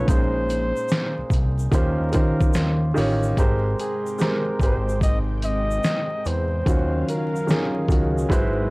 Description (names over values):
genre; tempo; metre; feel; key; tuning
lo-fi hip hop; 73 BPM; 4/4; swing 66% on 16ths; Ab major; A4 = 439 Hz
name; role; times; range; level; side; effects
breathy flugelhorn; melody; 0.0-8.3 s; Ab4 to Eb5; -28 LUFS; equal; none
warm upright piano; accompaniment; 0.0-8.7 s; Bb2 to Db5; -25 LUFS; right 1 dB; cassette tape
string machine, cellos; sustained chords; 0.0-8.7 s; Eb3 to G5; -32 LUFS; equal; ensemble chorus
fat analog bass; bass; 0.0-8.7 s; Ab1 to Eb3; -24 LUFS; equal; transformer saturation
trip hop sampler-style drum kit; drums; 0.1-8.6 s; hi-hat, kick drum, snare drum; -21 LUFS; equal; none
tube shaker; percussion; 0.1-8.6 s; none; -45 LUFS; left 3 dB; none
room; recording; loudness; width
little or no reverb; dry, gritty hardware recording, vinyl crackle; -19 LUFS; side -25 dB against mid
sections
0.0-3.4 A section; 3.4-8.7 B section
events
break 0.1-3.4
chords
0.1 Bbm11; 1.7 Eb13; 3.4 Abmaj9; 6.7 Ebm9